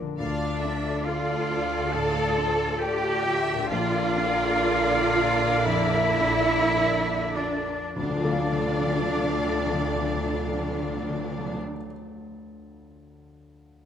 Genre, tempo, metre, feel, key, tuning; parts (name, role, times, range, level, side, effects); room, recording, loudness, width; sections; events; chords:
cinematic, emotional film score for orchestra; 48-70 BPM; 4/4; rubato; D minor; A4 = 439 Hz
felt-muted upright piano; accompaniment; 0.0-13.9 s; Bb1 to F5; -34 LUFS; left 2 dB
concert harp; arpeggios; 0.0-11.9 s; Bb2 to Bb5; -38 LUFS; left 6 dB
warm symphonic violin section; melody; 0.2-11.6 s; C5 to F5; -36 LUFS; left 2 dB
clear oboe; second line; 0.2-11.6 s; D5 to A5; -33 LUFS; right 1 dB
hollow concert flute; second line; 0.2-11.6 s; D5 to A5; -31 LUFS; left 1 dB
warm symphonic violin section; second line; 0.2-11.6 s; A4 to D5; -36 LUFS; left 2 dB
warm symphonic viola section; accompaniment; 0.2-11.6 s; D3 to A4; -35 LUFS; equal
dark French horn section; sustained chords; 0.2-11.6 s; A3 to F4; -34 LUFS; left 4 dB
rich symphonic double bass section; bass; 0.2-11.6 s; Bb1 to D2; -33 LUFS; right 4 dB
warm symphonic cello section; bass; 0.2-11.6 s; D4 to A4; -28 LUFS; right 1 dB
timpani; percussion; 8.0-11.6 s; D3; -33 LUFS; left 1 dB
moderate scoring stage reverb, RT60 2.0 s; -22 LUFS; side -9 dB against mid
0.2-8.0 A section; 8.0-12.7 B section
slowing down 0.0-8.0
0.2 Dm; 3.7 Bb; 8.0 Dm